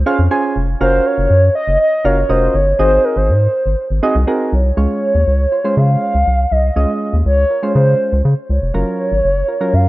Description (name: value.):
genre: dance-pop.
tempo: 121 BPM.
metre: 4/4.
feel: straight.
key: Db major.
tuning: A4 = 441 Hz.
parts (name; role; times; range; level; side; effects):
hollow clarinet-like synth lead; melody; 0.0-9.9 s; Bb4 to F5; -16 LUFS; equal; chorus, digital delay.
round analog bass; bass; 0.0-9.9 s; F1 to Db3; -14 LUFS; equal; none.
soft electric-piano-like synth keys; accompaniment; 0.1-9.9 s; Gb3 to Ab5; -19 LUFS; right 2 dB; chorus.
room: light reverb.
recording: worn, warbling old tape, cassette tape, warbly pitch drift.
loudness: -12 LUFS.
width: side -18 dB against mid.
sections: 0.0-4.8 A section; 4.8-9.9 B section.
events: none.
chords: 0.0 Dbmaj7; 0.8 Gbmaj7; 2.8 Ab7; 4.8 Dbmaj7; 8.7 Gbmaj7.